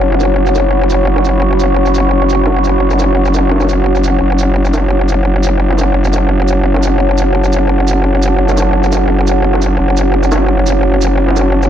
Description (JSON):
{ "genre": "dark technical drum and bass", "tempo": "172 BPM", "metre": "4/4", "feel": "straight", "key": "F# minor", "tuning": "A4 = 440 Hz", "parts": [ { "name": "deep dark ambient pad", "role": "sustained chords", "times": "0.0-11.7 s", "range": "F#4 to C#6", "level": "-17 LUFS", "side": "right 3 dB", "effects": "chorus, built-in reverb" }, { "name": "growl bass", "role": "bass", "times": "0.0-11.7 s", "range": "F#1", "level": "-12 LUFS", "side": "equal", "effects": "chorus, overdrive" }, { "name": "breakbeat sampler-style drum kit", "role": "drums", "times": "0.0-11.6 s", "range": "hi-hat, snare drum", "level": "-22 LUFS", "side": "equal", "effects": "high-pass filter on hats, low-pass filter on hats, high-pass filter on snare, low-pass filter on snare, high-pass filter on room, low-pass filter on room" }, { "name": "deep dark ambient pad", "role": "texture", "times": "0.0-11.7 s", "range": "F#4 to B5", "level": "-18 LUFS", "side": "left 3 dB", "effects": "chorus, built-in reverb" }, { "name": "shaker", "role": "drums", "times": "0.2-11.7 s", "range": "none", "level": "-28 LUFS", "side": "right 7 dB", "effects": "low-pass filter on cymbals, low-pass filter on perc" } ], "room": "digital ambience", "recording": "none", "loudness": "-10 LUFS", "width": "side -10 dB against mid", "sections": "0.0-11.7 A section", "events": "none", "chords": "0.0 F#m" }